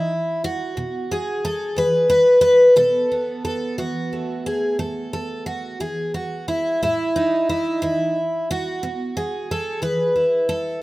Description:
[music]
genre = folk, solo fingerstyle acoustic guitar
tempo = 60 BPM (dotted quarters)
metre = 6/8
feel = rubato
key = unclear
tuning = A4 = 441 Hz
[part]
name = picked twelve-string acoustic guitar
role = solo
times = 0.0-10.8 s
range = A2 to B4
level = -18 LUFS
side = equal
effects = none
[sound]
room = light reverb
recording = rough home demo mix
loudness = -18 LUFS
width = side -18 dB against mid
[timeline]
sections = 0.0-10.8 A section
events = none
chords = 0.0 N.C.; 0.8 B7sus4; 4.8 Asus2; 8.8 B7sus4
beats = | 0.77 1.76 | 2.76 3.78 | 4.79 5.81 | 6.83 7.84 | 8.83 9.83

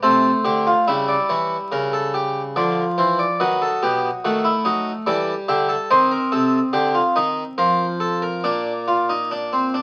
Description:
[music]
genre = classical, baroque-style 4-part fugue for harpsichord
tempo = 72 BPM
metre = 3/4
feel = straight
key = Bb major from 5.9 s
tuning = A4 = 441 Hz
[part]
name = harpsichord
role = solo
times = 0.0-9.8 s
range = Bb2 to E5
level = -20 LUFS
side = equal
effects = none
[sound]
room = moderate studio reverb, RT60 0.8 s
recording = very old 78 rpm record, vinyl crackle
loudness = -20 LUFS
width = mono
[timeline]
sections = 0.9-9.8 A section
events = none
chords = 0.0 Am/C; 0.9 A7/C#; 2.6 Dm; 3.4 B7; 5.1 Em; 5.9 Cm; 7.6 F; 8.4 Bb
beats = 0.04 | 0.89 1.72 2.56 | 3.40 4.23 5.06 | 5.89 6.73 7.58 | 8.44 9.31

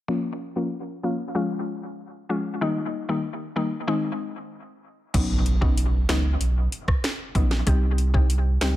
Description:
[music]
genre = dancehall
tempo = 95 BPM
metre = 4/4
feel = straight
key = unclear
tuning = A4 = 440 Hz
[part]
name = mallet-like synth pluck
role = accompaniment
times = 0.1-8.7 s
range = Eb3 to G4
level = -27 LUFS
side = left 2 dB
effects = chorus, low-pass filter, dub echo
[part]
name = saturated sub bass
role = bass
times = 5.1-8.8 s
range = Bb1 to C#2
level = -22 LUFS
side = equal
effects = none
[part]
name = island pop drum kit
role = drums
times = 5.1-8.8 s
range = crash cymbal, finger snaps, hi-hat, kick drum, rim click, snare drum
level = -23 LUFS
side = equal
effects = none
[part]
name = impact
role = sound effects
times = 5.1-7.7 s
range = none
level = -33 LUFS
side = right 2 dB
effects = none
[sound]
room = light reverb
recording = echo-heavy mix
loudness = -22 LUFS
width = side -14 dB against mid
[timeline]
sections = 0.1-5.1 A section; 5.1-8.8 B section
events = filter sweep on synth pluck 0.1-5.1; impact 5.1-7.7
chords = 0.1 Bbm; 1.4 Db; 2.6 Eb; 3.9 Ab; 5.1 Badd9; 7.7 Cm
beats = | 0.09 0.72 1.35 1.99 | 2.62 3.25 3.88 4.51 | 5.14 5.77 6.41 7.04 | 7.67 8.30

